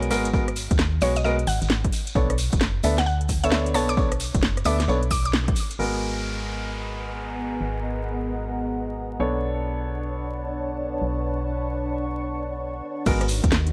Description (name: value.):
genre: UK garage, two-step garage.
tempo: 132 BPM.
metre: 4/4.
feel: swing 64% on 16ths.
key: G# minor.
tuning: A4 = 440 Hz.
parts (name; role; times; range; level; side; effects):
clear baby grand piano; stabs; 0.0-13.2 s; G#3 to E5; -31 LUFS; equal; low-pass filter, tape echo.
organ-like FM bass; bass; 0.0-13.7 s; F#1 to D#2; -29 LUFS; equal; sidechain pumping.
garage drum kit; drums; 0.0-5.8, 13.1-13.7 s; crash cymbal, hi-hat, rim click, snare drum; -30 LUFS; equal; none.
shekere; percussion; 0.1-5.8, 13.1-13.6 s; none; -39 LUFS; equal; none.
electronic kick drum; drums; 0.3-5.5, 13.1-13.5 s; none; -27 LUFS; equal; none.
mallet-like synth pluck; melody; 1.0-5.3 s; C#5 to D6; -31 LUFS; equal; chorus, tape echo.
soft string machine; sustained chords; 5.8-13.7 s; B3 to A#5; -35 LUFS; equal; ensemble chorus, sidechain pumping.
downlifter; sound effects; 5.8-9.4 s; none; -40 LUFS; equal; none.
deep dark ambient pad; texture; 6.8-13.7 s; B3 to C#6; -36 LUFS; equal; chorus, built-in reverb, sidechain pumping.
room: light reverb, digital ambience.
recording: dry, gritty hardware recording, vinyl crackle.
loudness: -25 LUFS.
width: mono.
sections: 0.0-5.8 A section; 5.8-13.1 B section.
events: band accent 5.3; filter sweep on string machine 5.8-13.1.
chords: 0.0 G#m9; 1.9 Bm9; 5.8 G#m9; 9.2 Bm9; 13.1 G#m9.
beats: | 0.34 0.79 1.24 1.70 | 2.15 2.61 3.06 3.52 | 3.97 4.43 4.88 5.33 | 5.79 6.24 6.70 7.15 | 7.61 8.06 8.52 8.97 | 9.43 9.88 10.34 10.79 | 11.24 11.70 12.15 12.61 | 13.06 13.52.